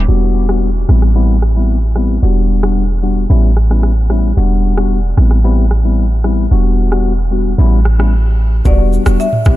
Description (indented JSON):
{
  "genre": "afrobeats",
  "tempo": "112 BPM",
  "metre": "4/4",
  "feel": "straight",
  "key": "E minor",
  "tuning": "A4 = 440 Hz",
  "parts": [
    { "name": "mellow tine electric piano", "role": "accompaniment", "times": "0.0-9.6 s", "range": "G3 to G4", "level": "-17 LUFS", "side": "left 4 dB", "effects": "wide subtle chorus" },
    { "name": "clean 808-style bass", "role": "bass", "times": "0.0-9.6 s", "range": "E1 to A1", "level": "-11 LUFS", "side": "equal", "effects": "none" },
    { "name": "afro-pop drum kit", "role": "drums", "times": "0.5-9.6 s", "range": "kick drum, rim click, shaker, toms", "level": "-22 LUFS", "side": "right 1 dB", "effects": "none" },
    { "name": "marimba with medium mallets", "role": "melody", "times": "8.7-9.6 s", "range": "D5 to E5", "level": "-23 LUFS", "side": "left 1 dB", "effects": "tape echo" }
  ],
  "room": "little or no reverb",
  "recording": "low-pass filter",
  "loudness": "-10 LUFS",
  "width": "side -16 dB against mid",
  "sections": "0.1-8.7 A section",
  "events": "filter sweep 0.1-8.7; break 8.1-8.7",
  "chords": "0.1 Em7; 0.9 Am7; 2.2 Em7; 3.3 A7; 4.4 Em7; 5.2 Am7; 6.5 Em7; 7.6 A7; 8.7 Em7",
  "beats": "| 0.08 0.62 1.16 1.69 | 2.23 2.76 3.30 3.83 | 4.37 4.91 5.44 5.98 | 6.51 7.05 7.58 8.12 | 8.66 9.19"
}